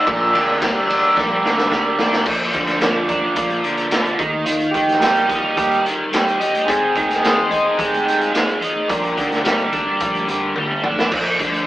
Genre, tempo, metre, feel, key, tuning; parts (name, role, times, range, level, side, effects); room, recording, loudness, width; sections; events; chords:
psychedelic rock; 109 BPM; 4/4; straight; Bb mixolydian; A4 = 438 Hz
combo organ; sustained chords; 0.0-10.5 s; F3 to D5; -20 LUFS; right 2 dB; phaser
biting overdriven guitar; riff; 0.0-11.7 s; Ab2 to Eb4; -20 LUFS; equal; rotary speaker
upright bass; bass; 0.1-11.7 s; F1 to F2; -33 LUFS; equal
raw garage drum kit; drums; 0.1-11.7 s; crash cymbal, hi-hat, kick drum, ride cymbal, snare drum, toms; -20 LUFS; equal
congas; percussion; 0.3-11.7 s; -39 LUFS; left 1 dB
wet studio reverb, RT60 0.6 s; band playing live in one room, AM radio sound; -15 LUFS; side -15 dB against mid
0.0-2.3 A section; 2.3-11.7 B section
drum fill 1.2-2.3, 10.6-11.1; transistor combo organ solo 2.3-11.7
0.1 Gm/Bb; 2.3 Bb; 4.2 Eb; 6.7 Ab; 8.9 Gm/Bb; 11.1 Bb